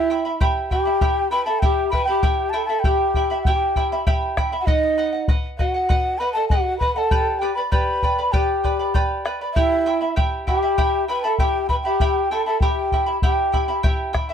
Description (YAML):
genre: andean folk, Andean ensemble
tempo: 98 BPM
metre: 4/4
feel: straight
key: E minor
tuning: A4 = 439 Hz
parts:
  - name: breathy mellow large quena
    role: melody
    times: 0.0-13.8 s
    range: D#5 to B5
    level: -22 LUFS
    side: equal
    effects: none
  - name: mellow pan flute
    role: second line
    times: 0.0-13.8 s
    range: D#4 to B4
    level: -24 LUFS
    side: left 1 dB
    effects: none
  - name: charango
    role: accompaniment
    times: 0.0-14.3 s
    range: E4 to B5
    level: -25 LUFS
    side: right 3 dB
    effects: none
  - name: bombo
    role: percussion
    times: 0.4-14.3 s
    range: none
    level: -22 LUFS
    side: left 1 dB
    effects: none
room: light reverb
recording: close, detailed microphones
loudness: -18 LUFS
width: side -8 dB against mid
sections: 0.0-14.3 A section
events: none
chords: 0.0 Em; 4.7 B; 7.1 G; 9.6 Em